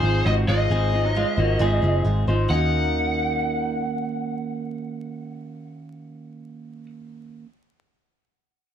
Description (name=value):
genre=indie pop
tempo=133 BPM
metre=4/4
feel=straight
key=Eb dorian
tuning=A4 = 439 Hz
part: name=lead guitar through a small cranked amp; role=melody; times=0.0-6.9 s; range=C5 to Gb5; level=-26 LUFS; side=left 2 dB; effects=overdrive, tape echo
part: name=picked steel-string acoustic guitar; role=accompaniment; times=0.0-7.5 s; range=Eb3 to C5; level=-29 LUFS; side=right 5 dB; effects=none
part: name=electric guitar through a small old amp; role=arpeggios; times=0.0-3.8 s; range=Gb3 to C5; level=-28 LUFS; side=left 3 dB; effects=none
part: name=vintage muted picked electric bass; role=bass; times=0.0-7.4 s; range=Gb1 to Eb2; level=-22 LUFS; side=equal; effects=none
room=light reverb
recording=vinyl crackle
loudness=-20 LUFS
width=side -9 dB against mid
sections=0.0-2.5 A section; 2.5-6.1 B section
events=none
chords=0.0 Ab6; 2.5 Ebm7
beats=0.25 | 0.70 1.15 1.60 2.05 | 2.50 2.95 3.40 3.85 | 4.30 4.75 5.20 5.65